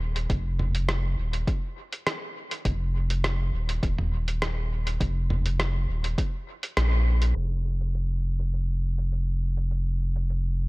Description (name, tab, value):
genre	ambient dub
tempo	102 BPM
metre	4/4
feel	straight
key	unclear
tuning	A4 = 441 Hz
part	round analog bass	bass	0.0-10.7 s	Eb1 to Bb1	-25 LUFS	equal	tube saturation
part	lo-fi sampler-style drum kit	drums	0.2-10.4 s	hi-hat, rim click, toms	-31 LUFS	equal	low-pass filter on hats, low-pass filter on snare, low-pass filter on toms, dub echo
part	electronic kick drum	drums	0.3-6.3 s	none	-28 LUFS	equal	none
room	digital ambience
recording	low-pass filter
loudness	-25 LUFS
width	side -22 dB against mid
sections	0.0-7.4 A section; 7.4-10.7 B section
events	band accent 6.8; filter sweep on drum 7.4-10.7; filter sweep 7.4-10.7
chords	none